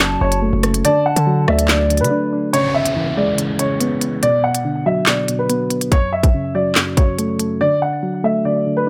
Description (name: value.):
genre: hip hop, drill.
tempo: 142 BPM.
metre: 4/4.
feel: half-time.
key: C# phrygian.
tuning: A4 = 439 Hz.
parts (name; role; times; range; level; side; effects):
hollow clarinet-like synth lead; second line; 0.0-2.5 s; D5 to A5; -27 LUFS; equal; chorus, tape echo.
soft electric-piano-like synth keys; accompaniment; 0.0-8.9 s; F#2 to D4; -22 LUFS; equal; chorus.
distorted 808-style bass; bass; 0.0-2.1 s; F#1 to D3; -20 LUFS; equal; distortion.
drill drum kit; drums; 0.0-7.5 s; handclaps, hi-hat, kick drum, rim click, snare drum; -19 LUFS; equal; none.
dark baby grand piano; melody; 0.2-8.9 s; B4 to F#5; -22 LUFS; equal; tape echo.
downlifter; sound effects; 2.5-5.9 s; none; -31 LUFS; equal; none.
room: light reverb, digital ambience.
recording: none.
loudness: -17 LUFS.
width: mono.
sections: 0.0-2.5 A section; 2.5-8.9 B section.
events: break 2.1-2.5.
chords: 0.0 F#m; 0.8 D; 2.5 C#m7; 4.2 Bm; 5.9 F#m; 7.6 D.